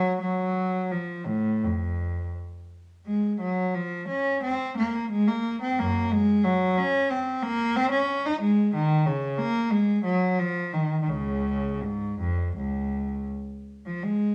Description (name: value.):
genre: classical, baroque-style suite movement for unaccompanied cello.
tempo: 80-96 BPM.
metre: 4/4.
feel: rubato.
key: Db major from 3.1 s.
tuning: A4 = 439 Hz.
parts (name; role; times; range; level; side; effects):
rich cello; solo; 0.0-14.3 s; Db2 to Eb4; -26 LUFS; equal; none.
room: moderate stone room reverb, RT60 1.0 s.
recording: small room ambience.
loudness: -26 LUFS.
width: mono.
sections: 0.0-14.0 A section.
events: none.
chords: none.